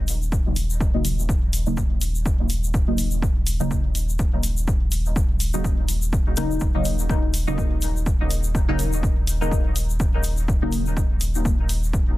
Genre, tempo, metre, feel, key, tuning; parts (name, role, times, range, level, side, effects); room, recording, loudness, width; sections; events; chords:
dub techno; 124 BPM; 4/4; swing 56% on 16ths; Eb minor; A4 = 440 Hz
warm sub bass; bass; 0.0-12.2 s; Eb1; -24 LUFS; equal; sidechain pumping
electronic hi-hat; drums; 0.1-11.8 s; -32 LUFS; equal; studio reverb
egg shaker; percussion; 0.1-12.0 s; -33 LUFS; left 4 dB
electronic kick drum; drums; 0.3-12.0 s; -23 LUFS; equal; studio reverb
deep mellow chord stab; stabs; 0.9-10.7 s; Db3 to Eb4; -28 LUFS; equal; chorus, phaser, sidechain pumping, dub echo
little or no reverb; dense, heavily limited modern master; -20 LUFS; side -17 dB against mid
0.0-12.2 A section
0.0 Ebm7